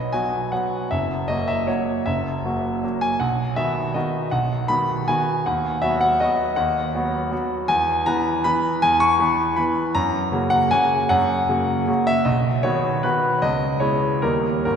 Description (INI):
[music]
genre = classical, piano waltz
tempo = 138-168 BPM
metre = 3/4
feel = rubato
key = B major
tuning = A4 = 440 Hz
[part]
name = bright concert grand piano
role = solo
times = 0.0-14.8 s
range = F#1 to C#6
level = -19 LUFS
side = equal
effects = none
[sound]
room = wet church reverb, RT60 3.5 s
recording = recorded in a church or concert hall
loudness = -19 LUFS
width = side -7 dB against mid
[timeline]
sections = 0.0-14.8 A section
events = none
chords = 0.0 B; 0.9 F#7; 3.2 B; 5.5 B/D#; 7.7 E; 10.0 F#; 12.3 B; 13.4 C#m7; 14.2 D#